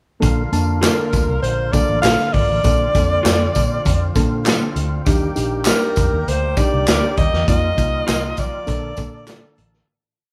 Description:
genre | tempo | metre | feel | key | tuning
uptempo 1960s-style soul | 99 BPM | 4/4 | straight | Bb major | A4 = 440 Hz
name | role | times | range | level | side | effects
reed electric piano | accompaniment | 0.2-9.6 s | Bb3 to A5 | -27 LUFS | equal | none
overdriven tonewheel organ | sustained chords | 0.2-9.9 s | D3 to A4 | -32 LUFS | equal | none
vintage muted fingered electric bass | bass | 0.2-9.8 s | Ab1 to F3 | -24 LUFS | equal | none
crunchy breakbeat drum kit | drums | 0.2-9.8 s | hi-hat, kick drum, snare drum | -22 LUFS | equal | none
tambourine and handclaps | percussion | 0.2-9.4 s | none | -30 LUFS | equal | none
breathy alto saxophone | melody | 0.8-9.6 s | Bb4 to F5 | -23 LUFS | equal | none
electric guitar through a small old amp | stabs | 0.8-9.4 s | F4 to Eb5 | -29 LUFS | equal | spring reverb
room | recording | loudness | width
light reverb | band playing live in one room | -18 LUFS | mono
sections
0.2-9.9 A section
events
fade-out 7.5-9.9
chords
0.2 Bbmaj7; 5.1 Ebmaj7; 7.5 F7sus4; 8.7 Bbmaj7

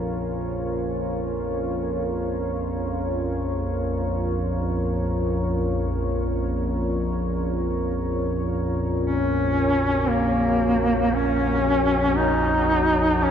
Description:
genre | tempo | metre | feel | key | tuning
dark ambient drone | free time | none | none | unclear | A4 = 440 Hz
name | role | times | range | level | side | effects
deep dark ambient pad | sustained chords | 0.0-13.3 s | Db4 to Ab5 | -27 LUFS | equal | chorus, built-in reverb
analog drone | drone | 0.0-13.3 s | Bb1 to F2 | -26 LUFS | equal | chorus
warm duduk | melody | 9.1-13.3 s | Bb3 to Eb4 | -20 LUFS | equal | tape echo
room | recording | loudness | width
wet cathedral reverb, RT60 5.7 s | none | -21 LUFS | side -8 dB against mid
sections
0.0-13.3 A section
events
fade-in on synth drone 0.0-13.3; fade-in on ambient pad 0.0-13.3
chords
0.0 Bbm; 9.0 Gb

